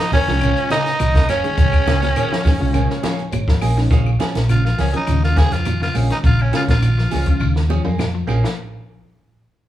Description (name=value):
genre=afrobeat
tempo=103 BPM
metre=4/4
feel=straight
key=Bb minor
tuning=A4 = 440 Hz
part: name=raspy tenor saxophone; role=melody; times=0.0-7.5 s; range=Db4 to Ab4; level=-22 LUFS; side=equal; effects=none
part: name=edgy alto saxophone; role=second line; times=0.0-3.3 s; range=Db5 to Eb5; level=-25 LUFS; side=right 5 dB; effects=none
part: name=clean electric guitar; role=arpeggios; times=0.0-8.5 s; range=Db3 to Ab3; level=-26 LUFS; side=left 5 dB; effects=none
part: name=mellow reed electric piano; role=accompaniment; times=0.1-7.8 s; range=Ab3 to Ab5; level=-28 LUFS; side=right 1 dB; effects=fast tremolo
part: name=semi-hollow electric guitar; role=stabs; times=0.1-8.5 s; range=F3 to Ab4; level=-28 LUFS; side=right 3 dB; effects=phaser
part: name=hollow-body short-scale fingered electric bass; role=bass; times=0.1-8.4 s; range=Gb1 to F2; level=-19 LUFS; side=equal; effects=none
part: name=compact cocktail drum kit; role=drums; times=0.1-8.6 s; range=hi-hat, kick drum, snare drum, toms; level=-20 LUFS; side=equal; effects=none
part: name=congas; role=percussion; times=0.1-8.4 s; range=none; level=-30 LUFS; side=right 3 dB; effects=none
part: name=shekere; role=percussion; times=0.1-8.6 s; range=none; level=-29 LUFS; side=right 2 dB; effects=none
part: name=claves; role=percussion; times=0.4-8.4 s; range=none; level=-37 LUFS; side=left 6 dB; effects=none
room=light reverb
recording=band playing live in one room, small room ambience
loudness=-15 LUFS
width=side -12 dB against mid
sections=0.0-3.9 A section; 3.9-8.6 B section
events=reed electric piano fill 2.7-3.9; drum fill 7.4-8.6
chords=0.0 Gbmaj9; 3.9 Bbm7